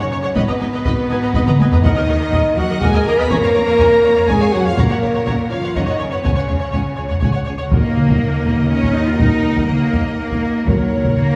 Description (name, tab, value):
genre	cinematic, epic orchestral film score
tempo	122 BPM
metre	3/4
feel	straight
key	Eb minor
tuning	A4 = 441 Hz
part	warm symphonic violin section	melody	0.0-11.4 s	Bb4 to Cb6	-32 LUFS	equal	none
part	rich symphonic violin section	second line	0.0-11.4 s	Gb4 to Cb6	-31 LUFS	equal	none
part	rich symphonic viola section	accompaniment	0.0-11.4 s	Bb4 to Eb5	-29 LUFS	equal	none
part	warm French horn section	sustained chords	0.0-10.8 s	Bb3 to Cb5	-20 LUFS	equal	none
part	rich symphonic cello section	bass	0.0-11.4 s	Bb2 to F4	-26 LUFS	equal	none
part	rich symphonic double bass section	bass	0.0-11.4 s	Ab1 to Gb2	-27 LUFS	equal	none
part	mellow tuba	bass	0.1-11.4 s	F1 to Eb2	-25 LUFS	equal	none
part	taiko ensemble	drums	0.4-11.4 s	none	-21 LUFS	equal	none
part	timpani	percussion	1.8-2.5, 7.7-8.4, 10.7-11.4 s	Eb3	-28 LUFS	equal	none
room	wet recital hall reverb, RT60 1.5 s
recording	recorded in a church or concert hall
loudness	-16 LUFS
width	mono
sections	0.0-7.7 A section; 7.7-11.4 B section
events	drum fill 1.5-1.8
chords	0.4 Abmadd9; 1.8 Ebm; 3.3 Db/F; 4.8 Gb; 6.2 Dbsus4; 7.7 Ebm; 10.7 Gb/Eb